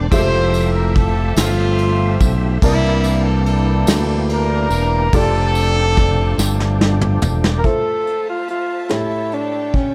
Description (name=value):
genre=slow gospel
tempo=48 BPM (dotted quarters)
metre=6/8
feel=straight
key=F major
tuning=A4 = 439 Hz
part: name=warm upright piano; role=accompaniment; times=0.0-9.9 s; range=A2 to A5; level=-28 LUFS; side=equal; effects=none
part: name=percussive tonewheel organ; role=sustained chords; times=0.0-7.6 s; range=E3 to E5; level=-27 LUFS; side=equal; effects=fast rotary speaker, overdrive
part: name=modern bright fingered electric bass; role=bass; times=0.0-7.6 s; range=E1 to D2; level=-19 LUFS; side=equal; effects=none
part: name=warm horn section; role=melody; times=0.1-6.8 s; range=G3 to C5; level=-23 LUFS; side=equal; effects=none
part: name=vintage brush drum kit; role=drums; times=0.1-9.9 s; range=hi-hat, kick drum, ride cymbal, snare drum, toms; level=-22 LUFS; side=equal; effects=none
part: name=tambourine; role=percussion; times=0.1-7.6 s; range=none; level=-32 LUFS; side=equal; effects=none
part: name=growling tenor saxophone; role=melody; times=7.6-9.9 s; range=C#4 to Bb4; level=-22 LUFS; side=equal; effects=none
part: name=clear studio string section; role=sustained chords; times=7.6-9.9 s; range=F4 to A5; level=-35 LUFS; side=equal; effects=none
room=light reverb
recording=none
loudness=-17 LUFS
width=mono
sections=0.0-7.6 A section; 7.6-9.9 B section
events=drum fill 6.4-7.6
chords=0.1 Fmaj9; 2.6 C13; 5.1 F69; 7.6 Fmaj7; 8.9 A7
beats=| 0.12 1.37 | 2.62 3.88 | 5.13 6.38 | 7.64 8.90